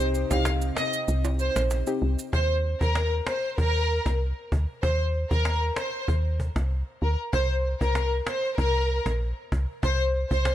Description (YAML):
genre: dancehall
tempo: 96 BPM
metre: 4/4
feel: straight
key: C minor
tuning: A4 = 445 Hz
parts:
  - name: soft round pluck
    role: accompaniment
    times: 0.0-2.0 s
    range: C4 to G4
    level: -32 LUFS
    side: left 4 dB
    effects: chorus
  - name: lush unison pad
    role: sustained chords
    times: 0.0-2.3 s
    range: C3 to G4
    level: -36 LUFS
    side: left 2 dB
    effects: chorus
  - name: woody FM bass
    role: bass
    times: 0.0-10.5 s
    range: Bb1 to Eb2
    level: -25 LUFS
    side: equal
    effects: none
  - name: maracas and timbales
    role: percussion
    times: 0.0-2.3 s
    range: none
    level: -38 LUFS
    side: right 7 dB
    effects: none
  - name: warm symphonic violin section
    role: melody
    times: 0.3-10.5 s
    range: Bb4 to F5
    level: -28 LUFS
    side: equal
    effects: ping-pong delay
  - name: cajon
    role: drums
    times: 0.3-10.5 s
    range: none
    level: -33 LUFS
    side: equal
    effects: none
room: small room ambience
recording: none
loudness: -23 LUFS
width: side -12 dB against mid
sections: 0.0-2.3 A section; 2.3-10.5 B section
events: kick muted 1.1-2.3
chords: 0.0 Cm; 2.3 Cm7 (rootless); 7.3 Bbsus2